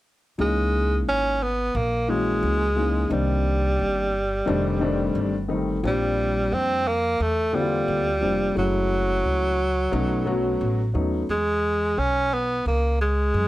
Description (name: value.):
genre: hip hop.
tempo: 88 BPM.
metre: 4/4.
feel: swing 62% on 16ths.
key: unclear.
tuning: A4 = 440 Hz.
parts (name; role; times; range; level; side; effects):
warm tenor saxophone; melody; 0.4-13.5 s; F#3 to C#4; -23 LUFS; right 1 dB; none.
dark grand piano; accompaniment; 0.4-11.2 s; D3 to F#4; -26 LUFS; left 2 dB; none.
upright bass; bass; 0.4-13.5 s; F1 to F#2; -26 LUFS; equal; none.
room: light reverb.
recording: none.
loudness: -21 LUFS.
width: side -16 dB against mid.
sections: 0.4-13.5 A section.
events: none.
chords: 0.4 C#m69; 3.1 Cm9; 4.5 F13; 5.8 A#6; 8.6 F#m7; 9.9 B9; 11.3 E6.